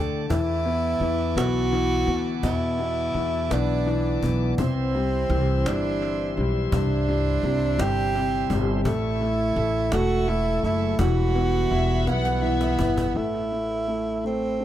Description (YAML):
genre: six-eight pop ballad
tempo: 56 BPM (dotted quarters)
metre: 6/8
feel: straight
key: E minor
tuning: A4 = 440 Hz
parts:
  - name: warm tenor saxophone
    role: melody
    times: 0.0-14.6 s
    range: B3 to G4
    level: -26 LUFS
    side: right 3 dB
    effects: dub echo
  - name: warm concert grand piano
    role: accompaniment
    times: 0.0-14.6 s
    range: G2 to E4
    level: -27 LUFS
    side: left 3 dB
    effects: dub echo
  - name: bright tonewheel organ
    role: sustained chords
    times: 0.0-13.1 s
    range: G3 to D6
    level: -35 LUFS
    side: equal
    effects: overdrive, slow rotary speaker
  - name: upright bass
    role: bass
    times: 0.0-14.6 s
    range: E1 to E2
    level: -26 LUFS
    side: equal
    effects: none
  - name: cajon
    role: drums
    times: 0.3-13.1 s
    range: none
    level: -33 LUFS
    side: equal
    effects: dub echo
  - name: warm studio violin section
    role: second line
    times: 11.7-13.2 s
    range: E5 to F#5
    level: -32 LUFS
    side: left 2 dB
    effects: dub echo
room: light reverb, small room ambience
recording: echo-heavy mix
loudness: -21 LUFS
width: side -12 dB against mid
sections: 0.0-13.2 A section; 13.2-14.6 B section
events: drum fill 12.1-13.2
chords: 0.3 E5; 4.6 C; 8.9 A; 11.0 Emadd9; 13.2 Am